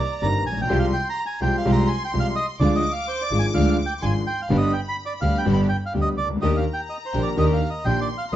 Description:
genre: tango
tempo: 126 BPM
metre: 4/4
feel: rubato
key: unclear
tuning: A4 = 438 Hz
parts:
  - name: bandoneon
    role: melody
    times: 0.0-8.4 s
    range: C5 to B5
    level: -26 LUFS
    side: right 2 dB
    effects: none
  - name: clear studio violin section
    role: second line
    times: 0.0-8.4 s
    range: Bb5 to D6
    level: -33 LUFS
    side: left 2 dB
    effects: none
  - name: clear concert grand piano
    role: accompaniment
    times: 0.2-8.4 s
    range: G1 to Ab4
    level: -24 LUFS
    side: left 1 dB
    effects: none
  - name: clear studio string section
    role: stabs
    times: 0.2-8.4 s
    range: Ab3 to G4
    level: -32 LUFS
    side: right 2 dB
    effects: none
  - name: dark double bass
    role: bass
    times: 0.2-8.4 s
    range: G1 to F2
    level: -24 LUFS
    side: right 1 dB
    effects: none
room: moderate studio reverb, RT60 0.8 s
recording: dark, warm production, nothing above 7.9 kHz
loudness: -20 LUFS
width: side -12 dB against mid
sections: 0.0-8.4 A section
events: none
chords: 0.0 Cm7; 0.7 Fmadd9/C; 2.6 Ddim; 4.5 G; 6.4 Ebmaj7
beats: 0.22 | 0.70 1.17 1.65 2.12 | 2.60 3.08 3.55 4.03 | 4.50 4.98 5.46 5.94 | 6.42 6.90 7.38 7.85 | 8.33

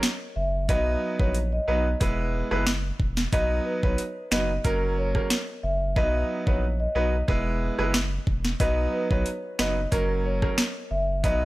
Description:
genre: dancehall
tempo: 91 BPM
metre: 4/4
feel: straight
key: B major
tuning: A4 = 440 Hz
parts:
  - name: bright grand piano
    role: accompaniment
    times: 0.0-11.4 s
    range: F#3 to B4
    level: -29 LUFS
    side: right 2 dB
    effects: sidechain pumping
  - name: island pop drum kit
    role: drums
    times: 0.0-11.4 s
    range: finger snaps, hi-hat, kick drum, rim click, snare drum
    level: -26 LUFS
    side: equal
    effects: overdrive
  - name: marimba with soft mallets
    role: melody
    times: 0.4-11.4 s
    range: A#4 to E5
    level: -29 LUFS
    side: equal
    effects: digital delay
  - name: saturated sub bass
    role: bass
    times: 0.4-11.4 s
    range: E1 to B1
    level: -28 LUFS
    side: equal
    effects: none
room: little or no reverb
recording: none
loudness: -23 LUFS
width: side -18 dB against mid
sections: 0.0-11.4 A section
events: hi-hats muted 6.0-8.6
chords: 0.0 N.C.; 0.7 B; 2.0 E; 3.3 B; 4.6 F#; 6.0 B; 7.3 E; 8.6 B; 9.9 F#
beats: 0.03 | 0.69 1.35 2.01 2.67 | 3.33 3.99 4.64 5.30 | 5.96 6.62 7.28 7.94 | 8.60 9.26 9.92 10.58 | 11.24

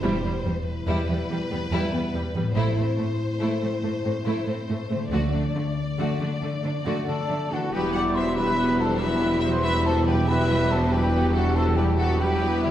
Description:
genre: cinematic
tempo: 94 BPM (dotted quarters)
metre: 12/8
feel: straight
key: E minor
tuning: A4 = 441 Hz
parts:
  - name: clear studio violin section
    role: melody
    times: 0.0-12.7 s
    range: G4 to F#5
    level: -32 LUFS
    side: left 4 dB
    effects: none
  - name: clear symphonic violin section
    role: second line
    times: 0.0-12.7 s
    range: G3 to G4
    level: -34 LUFS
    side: left 1 dB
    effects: none
  - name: rich symphonic viola section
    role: accompaniment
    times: 0.0-12.7 s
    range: F#3 to B3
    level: -30 LUFS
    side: right 1 dB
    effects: none
  - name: concert harp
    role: arpeggios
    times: 0.0-12.7 s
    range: E2 to A4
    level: -31 LUFS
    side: left 2 dB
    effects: none
  - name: clear symphonic cello section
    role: bass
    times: 0.0-12.7 s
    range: E2 to D3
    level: -28 LUFS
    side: right 1 dB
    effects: none
  - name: rich symphonic double bass section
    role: bass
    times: 0.0-12.7 s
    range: E1 to D2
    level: -28 LUFS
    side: right 2 dB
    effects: none
  - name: mellow hollow silver concert flute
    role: second line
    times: 7.1-12.7 s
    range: E5 to D6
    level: -29 LUFS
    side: equal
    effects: none
  - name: clear trumpet section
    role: stabs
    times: 7.1-12.7 s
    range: E4 to D5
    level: -30 LUFS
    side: right 1 dB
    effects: none
  - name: mellow French horn section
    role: sustained chords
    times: 7.7-12.7 s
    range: G3 to E4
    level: -28 LUFS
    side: left 3 dB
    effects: none
room: wet recital hall reverb, RT60 1.5 s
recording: heard from further back in the room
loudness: -22 LUFS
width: side -11 dB against mid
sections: 0.0-7.7 A section; 7.7-12.7 B section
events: build-up 0.0-7.7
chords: 0.0 Em; 2.6 Am; 5.1 D; 7.7 Emadd9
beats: | 0.02 0.66 1.29 1.92 | 2.56 3.19 3.83 4.47 | 5.12 5.77 6.42 7.08 | 7.73 8.37 9.01 9.64 | 10.28 10.92 11.56 12.20

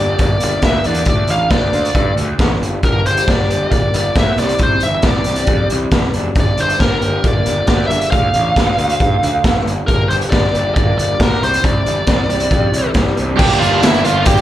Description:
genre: quiet-loud alternative rock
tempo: 136 BPM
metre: 4/4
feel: straight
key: G dorian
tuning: A4 = 440 Hz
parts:
  - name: bluesy overdriven lead guitar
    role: melody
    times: 0.0-14.4 s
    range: E4 to G5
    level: -18 LUFS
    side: equal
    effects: distortion, slapback echo, tape echo
  - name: electric guitar through a small old amp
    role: arpeggios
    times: 0.0-13.4 s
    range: G2 to G4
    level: -24 LUFS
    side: left 2 dB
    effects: tremolo, slapback echo
  - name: fuzz picked electric bass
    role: bass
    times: 0.0-14.4 s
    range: F1 to G2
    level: -20 LUFS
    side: equal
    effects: overdrive
  - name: raw garage drum kit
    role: drums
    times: 0.2-14.4 s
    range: crash cymbal, hi-hat, kick drum, snare drum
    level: -16 LUFS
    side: equal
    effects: none
  - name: string machine, violas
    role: sustained chords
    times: 13.4-14.4 s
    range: G4 to D6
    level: -29 LUFS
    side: left 4 dB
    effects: none
  - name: biting overdriven guitar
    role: riff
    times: 13.4-14.4 s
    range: G2 to D4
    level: -21 LUFS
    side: left 12 dB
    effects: slapback echo
  - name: heavy high-gain guitar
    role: riff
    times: 13.4-14.4 s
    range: G2 to D4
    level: -20 LUFS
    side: right 12 dB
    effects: distortion, slapback echo
room: little or no reverb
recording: live gig heard through the venue's PA, club ambience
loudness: -12 LUFS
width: side -13 dB against mid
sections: 0.0-13.4 A section; 13.4-14.4 B section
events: none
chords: 0.0 Gm; 1.1 Dm; 2.6 Gm; 4.4 Cadd9; 6.4 Gm; 8.1 Dm; 9.7 Gm; 11.4 Cadd9; 13.4 Gm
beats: 0.20 0.64 | 1.08 1.52 1.96 2.40 | 2.83 3.27 3.71 4.16 | 4.60 5.04 5.48 5.92 | 6.36 6.80 7.24 7.68 | 8.12 8.56 9.00 9.44 | 9.88 10.32 10.76 11.20 | 11.63 12.07 12.51 12.95 | 13.39 13.82 14.26

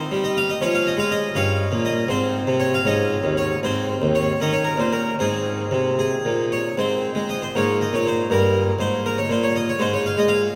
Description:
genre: classical, baroque-style suite movement for harpsichord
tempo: 80 BPM (dotted quarters)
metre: 6/8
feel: rubato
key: Ab major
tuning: A4 = 438 Hz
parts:
  - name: harpsichord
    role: solo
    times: 0.0-10.5 s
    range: Eb2 to F5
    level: -21 LUFS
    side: equal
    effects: none
room: wet cathedral reverb, RT60 6.7 s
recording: none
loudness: -21 LUFS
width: mono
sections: 0.0-6.8 A section; 6.8-10.6 B section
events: none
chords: 0.0 F5; 0.6 Db/F; 1.4 Gm7b5; 2.1 Ab; 2.8 Eb7sus4; 3.6 Ab; 4.4 Eb5; 5.2 Ab; 7.5 Abadd9; 8.3 Bbm13/G; 9.8 N.C.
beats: | 0.62 1.36 | 2.10 2.85 | 3.61 4.38 | 5.16 5.97 | 6.77 7.54 | 8.29 9.03 | 9.79 10.53

